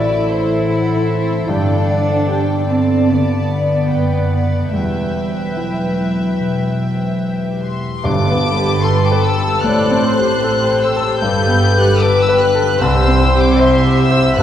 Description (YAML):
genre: cinematic, emotional film score for orchestra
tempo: 75 BPM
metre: 4/4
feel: rubato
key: G major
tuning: A4 = 440 Hz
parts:
  - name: warm studio violin section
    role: melody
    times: 0.0-14.4 s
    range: E5 to G6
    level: -24 LUFS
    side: left 3 dB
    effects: none
  - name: warm studio violin section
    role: second line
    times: 0.0-14.4 s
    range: G4 to E5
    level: -21 LUFS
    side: left 2 dB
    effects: none
  - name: warm baby grand piano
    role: accompaniment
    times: 0.0-14.4 s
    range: C2 to G5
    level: -20 LUFS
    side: equal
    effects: none
  - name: warm studio viola section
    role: accompaniment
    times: 0.0-14.4 s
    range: A4 to E5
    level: -23 LUFS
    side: left 2 dB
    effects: none
  - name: concert harp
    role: arpeggios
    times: 0.0-14.4 s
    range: E2 to C6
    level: -22 LUFS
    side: left 4 dB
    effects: none
  - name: dark studio cello section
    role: bass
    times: 0.0-14.4 s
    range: G2 to E4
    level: -20 LUFS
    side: right 2 dB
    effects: none
  - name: warm studio double bass section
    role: bass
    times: 0.0-14.4 s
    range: E1 to C2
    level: -20 LUFS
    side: right 1 dB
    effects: none
  - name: timpani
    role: percussion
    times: 8.0-9.2, 14.4 s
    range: G2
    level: -21 LUFS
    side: right 1 dB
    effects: none
room: wet scoring stage reverb, RT60 1.7 s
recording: heard from further back in the room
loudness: -13 LUFS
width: side -10 dB against mid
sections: 0.0-8.0 A section; 8.0-14.4 B section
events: none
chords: 0.0 Am; 1.5 G; 4.7 Emadd9; 8.0 Gadd9; 9.6 Am7; 11.2 Gadd9; 12.8 C